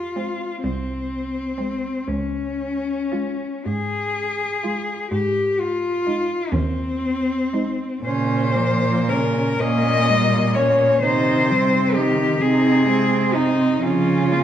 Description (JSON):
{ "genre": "classical, lyrical piece for cello ensemble", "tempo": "36-44 BPM (dotted quarters)", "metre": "6/8", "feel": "rubato", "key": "Ab major", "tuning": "A4 = 440 Hz", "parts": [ { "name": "rich cello", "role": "melody", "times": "0.0-14.4 s", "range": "C4 to Eb5", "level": "-22 LUFS", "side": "left 3 dB", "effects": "none" }, { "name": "rich cello", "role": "bass", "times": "0.0-14.4 s", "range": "C2 to Db3", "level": "-23 LUFS", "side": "right 2 dB", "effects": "none" }, { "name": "rich cello", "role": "second line", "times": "0.2-14.4 s", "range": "Bb3 to F4", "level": "-25 LUFS", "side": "right 6 dB", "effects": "none" }, { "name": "warm cello", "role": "accompaniment", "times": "0.2-14.4 s", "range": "Db3 to C4", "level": "-24 LUFS", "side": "left 1 dB", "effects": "none" } ], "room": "moderate concert hall reverb, RT60 1.7 s", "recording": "dark, warm production", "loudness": "-18 LUFS", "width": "side -10 dB against mid", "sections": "0.0-14.4 A section", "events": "none", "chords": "0.0 Fm; 2.1 Db; 5.1 Ab; 8.0 Bbm; 9.6 Gdim/Bb; 11.0 Cm; 12.4 Ab/C; 13.8 Bbm/Db" }